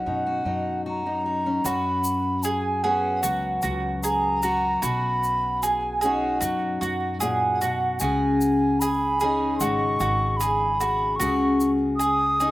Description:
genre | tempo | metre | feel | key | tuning
acoustic folk duo or small band | 75 BPM | 4/4 | straight | B major | A4 = 440 Hz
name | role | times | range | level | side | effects
reedy baroque flute | melody | 0.0-12.5 s | F#5 to D#6 | -25 LUFS | equal | none
fingerpicked steel-string acoustic guitar | accompaniment | 0.0-12.5 s | F#2 to G#4 | -26 LUFS | left 2 dB | slapback echo
upright bass | bass | 0.0-12.5 s | G#1 to F#2 | -32 LUFS | equal | none
egg shaker | percussion | 1.6-12.5 s | none | -33 LUFS | left 4 dB | none
mandolin | arpeggios | 1.7-12.5 s | F#4 to G#4 | -27 LUFS | right 2 dB | slapback echo
room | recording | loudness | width
little or no reverb | recorded outdoors, with no room sound | -21 LUFS | side -17 dB against mid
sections
0.0-1.7 A section; 1.7-12.5 B section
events
none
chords
0.0 Badd9; 1.7 F#sus4; 4.8 Badd9; 8.0 C#sus2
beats
0.06 0.86 | 1.65 2.45 3.25 4.04 | 4.84 5.63 6.43 7.22 | 8.02 8.82 9.61 10.41 | 11.21 12.00

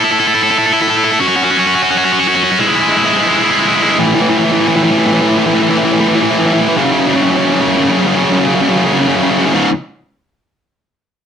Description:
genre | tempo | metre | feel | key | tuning
metal | 172 BPM | 4/4 | straight | unclear | A4 = 440 Hz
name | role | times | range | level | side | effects
high-gain distorted guitar | solo | 0.0-9.7 s | C#2 to A4 | -10 LUFS | equal | distortion
room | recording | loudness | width
moderate studio reverb, RT60 0.6 s | none | -10 LUFS | side -8 dB against mid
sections
0.0-4.0 A section; 4.0-9.5 B section; 9.5-10.9 C section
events
half time 0.0-4.0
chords
0.0 A5; 1.2 F#5; 2.6 E/G#; 4.0 A5; 6.8 F#5; 9.5 C#5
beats
0.17 0.51 0.86 | 1.21 1.55 1.90 2.24 | 2.59 2.94 3.28 3.63 | 3.98 4.32 4.67 5.02 | 5.37 5.71 6.06 6.41 | 6.76 7.11 7.45 7.80 | 8.15 8.50 8.85 9.20 | 9.54

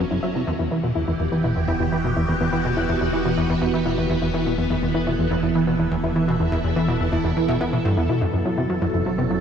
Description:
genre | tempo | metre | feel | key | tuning
ambient, sequencer-driven space music | 124 BPM | 4/4 | straight | E minor | A4 = 440 Hz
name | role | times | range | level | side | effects
phased string machine | sustained chords | 0.0-9.4 s | E3 to A4 | -24 LUFS | right 1 dB | ensemble chorus, phaser
soft round pluck | arpeggios | 0.0-9.4 s | B3 to E5 | -29 LUFS | left 2 dB | chorus, auto-pan, analog delay
plucky analog bass | riff | 0.0-9.4 s | E2 to B3 | -22 LUFS | equal | lush chorus, analog delay
warm sub bass | bass | 0.0-9.4 s | E1 to F#1 | -34 LUFS | equal | none
room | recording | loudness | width
wet cathedral reverb, RT60 6.3 s | dreamy mix soaked in reverb | -19 LUFS | side -8 dB against mid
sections
0.0-9.4 A section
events
none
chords
0.5 Em; 8.2 F#m7b5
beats
| 0.47 0.95 1.44 1.92 | 2.41 2.89 3.37 3.86 | 4.34 4.83 5.31 5.79 | 6.28 6.76 7.25 7.73 | 8.21 8.70 9.18

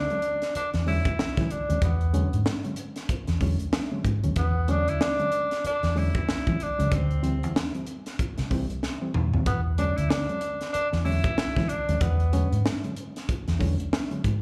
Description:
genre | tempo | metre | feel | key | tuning
funk | 94 BPM | 4/4 | swing 60% on 16ths | E mixolydian | A4 = 440 Hz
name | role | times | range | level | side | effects
clear tenor saxophone | melody | 0.0-12.6 s | B3 to E4 | -31 LUFS | equal | slapback echo
reed electric piano | stabs | 0.1-14.2 s | D3 to C#4 | -35 LUFS | equal | overdrive, slapback echo
crisp fusion drum kit | drums | 0.1-14.4 s | hi-hat, kick drum, snare drum, toms | -31 LUFS | equal | none
vintage muted fingered electric bass | bass | 0.6-14.4 s | C2 to E3 | -28 LUFS | equal | none
room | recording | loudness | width
light reverb, small room ambience | live gig heard through the venue's PA, club reverb, faint mains hum | -26 LUFS | mono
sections
0.0-14.4 A section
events
drum fill 8.8-9.5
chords
0.0 E13; 6.9 D9sus4; 9.5 E13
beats
0.54 1.18 | 1.82 2.46 3.09 3.73 | 4.37 5.00 5.64 6.28 | 6.92 7.55 8.19 8.83 | 9.46 10.10 10.74 11.37 | 12.01 12.65 13.28 13.92

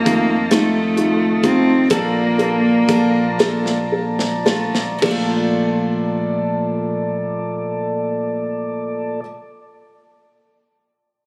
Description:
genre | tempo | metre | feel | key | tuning
six-eight pop ballad | 35-44 BPM (dotted quarters) | 6/8 | straight | Bb major | A4 = 442 Hz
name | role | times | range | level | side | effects
rich cello | melody | 0.0-3.9 s | A3 to C4 | -20 LUFS | equal | none
mellow tonewheel organ | sustained chords | 0.0-9.2 s | Bb2 to Bb5 | -27 LUFS | equal | slow rotary speaker
picked steel-string acoustic guitar | arpeggios | 0.0-9.3 s | F2 to F4 | -28 LUFS | equal | none
felt-muted upright piano | accompaniment | 0.1-9.2 s | A3 to A4 | -23 LUFS | equal | none
fretless electric bass | bass | 0.1-9.2 s | Bb1 to F2 | -28 LUFS | equal | none
modern studio drum kit | drums | 0.1-5.3 s | crash cymbal, hi-hat, kick drum, snare drum | -26 LUFS | equal | none
room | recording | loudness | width
light reverb | recorded on a phone in the room, club reverb | -18 LUFS | mono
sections
0.0-5.0 A section; 5.0-8.4 B section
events
slowing down 0.0-5.0; drum fill 3.4-5.0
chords
0.0 F7; 1.9 Bbmaj7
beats
0.51 | 1.91 3.40 | 5.02 6.73

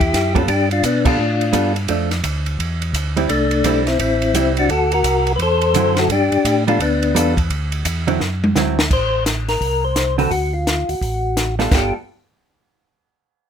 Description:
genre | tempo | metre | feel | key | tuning
soul jazz organ trio | 171 BPM | 4/4 | swing 64% on 8ths | unclear | A4 = 440 Hz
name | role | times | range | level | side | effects
percussive tonewheel organ | melody | 0.0-11.9 s | A3 to C5 | -18 LUFS | left 3 dB | slow rotary speaker
mellow tonewheel organ | bass | 0.0-11.9 s | G1 to B2 | -21 LUFS | equal | chorus vibrato, slow rotary speaker
compact cocktail drum kit | drums | 0.0-11.8 s | crash cymbal, hi-hat, kick drum, ride cymbal, snare drum, toms | -22 LUFS | right 1 dB | none
hollow-body jazz guitar | accompaniment | 0.3-11.9 s | D3 to B4 | -20 LUFS | right 5 dB | none
room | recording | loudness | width
light reverb | close, detailed microphones | -15 LUFS | side -8 dB against mid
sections
0.0-8.9 A section; 8.9-11.7 B section; 11.7-13.1 C section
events
band accent 1.0; drum fill 8.2-8.9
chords
0.5 G9; 1.9 Dm; 2.6 D9sus4; 3.3 Am7; 4.7 D9; 6.1 G9; 7.5 D9; 8.9 Am; 10.3 D; 11.7 G9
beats
0.14 | 0.48 0.84 1.19 1.54 | 1.89 2.24 2.59 2.94 | 3.29 3.64 3.99 4.34 | 4.69 5.04 5.39 5.75 | 6.10 6.45 6.80 7.15 | 7.50 7.85 8.20 8.55 | 8.91 9.26 9.61 9.96 | 10.31 10.66 11.02 11.37 | 11.72

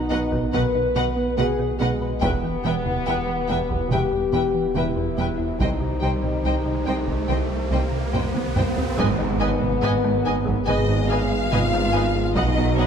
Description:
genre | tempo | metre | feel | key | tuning
cinematic, hybrid orchestral and electronic film score | 71 BPM | 4/4 | straight | unclear | A4 = 439 Hz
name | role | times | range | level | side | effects
dark French horn section | sustained chords | 0.0-12.9 s | G#3 to B4 | -26 LUFS | left 4 dB | none
dark analog pad | sustained chords | 0.0-12.9 s | B2 to D#5 | -30 LUFS | left 1 dB | lush chorus
thumb-piano-like synth pluck | arpeggios | 0.0-12.9 s | C3 to B4 | -35 LUFS | left 2 dB | none
rubbery square bass | riff | 0.0-12.9 s | C2 to B3 | -30 LUFS | right 2 dB | none
saturated sub bass | bass | 0.0-12.9 s | E1 to C2 | -30 LUFS | equal | none
rich symphonic violin section | melody | 0.1-12.9 s | F#5 to G#5 | -32 LUFS | left 5 dB | none
rich symphonic violin section | second line | 0.1-12.9 s | C#5 to E#5 | -31 LUFS | left 2 dB | none
rich symphonic viola section | accompaniment | 0.1-12.9 s | B4 to D#5 | -33 LUFS | right 1 dB | none
rich symphonic double bass section | bass | 0.1-12.9 s | E1 to C2 | -30 LUFS | right 4 dB | none
warm symphonic cello section | bass | 0.1-12.9 s | C2 to B2 | -29 LUFS | right 5 dB | none
taiko ensemble | drums | 0.3-12.9 s | none | -29 LUFS | equal | none
riser and impact | sound effects | 4.6-12.4 s | none | -31 LUFS | right 2 dB | none
room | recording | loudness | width
moderate scoring stage reverb, RT60 2.0 s | none | -20 LUFS | side -7 dB against mid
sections
0.0-9.0 A section; 9.0-12.9 B section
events
riser 4.6-9.0; drum fill 8.1-9.0; impact 9.0-12.4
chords
0.0 B; 2.2 Em; 5.6 Cm; 9.0 G#m; 12.4 B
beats
0.53 1.38 | 2.22 3.07 3.91 4.76 | 5.60 6.45 7.29 8.14 | 8.98 9.83 10.67 11.52 | 12.36

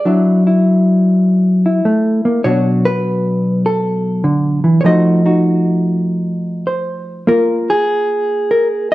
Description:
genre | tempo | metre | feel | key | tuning
solo jazz | 100 BPM | 4/4 | swing 67% on 8ths, rubato | unclear | A4 = 440 Hz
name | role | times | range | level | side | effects
hollow-body jazz guitar | solo | 0.0-8.9 s | B2 to Eb5 | -12 LUFS | equal | none
room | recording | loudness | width
moderate large studio reverb, RT60 1.4 s | worn, warbling old tape, cassette tape, warbly pitch drift | -12 LUFS | side -16 dB against mid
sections
0.0-8.9 A section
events
none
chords
0.1 F#m7b13; 2.4 Bm7; 4.8 F7b9; 7.3 A#5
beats
| 0.05 0.66 1.25 1.85 | 2.44 3.04 3.64 4.24 | 4.84 5.44 6.05 6.66 | 7.29 7.90 8.51

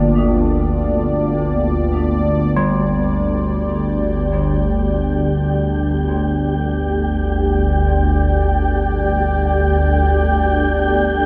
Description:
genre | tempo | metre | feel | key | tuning
dark ambient drone | free time | none | none | unclear | A4 = 442 Hz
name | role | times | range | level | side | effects
dark analog pad | sustained chords | 0.0-11.3 s | Bb3 to D5 | -24 LUFS | equal | chorus
gamelan-type bronze metallophone | arpeggios | 0.0-9.6 s | G3 to Bb3 | -28 LUFS | equal | diffuse ambient delay
organ-like drone | drone | 0.0-11.3 s | G1 to D2 | -20 LUFS | equal | ensemble chorus, built-in reverb
wind-like tuned noise texture | texture | 3.3-11.3 s | G4 to G5 | -25 LUFS | equal | built-in reverb
room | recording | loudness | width
wet huge ambient reverb, RT60 7.3 s | dark, warm production | -17 LUFS | mono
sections
0.0-2.6 A section; 2.6-11.3 B section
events
filter sweep on synth drone 2.6-11.3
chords
0.0 Bb; 2.6 G5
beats
free time

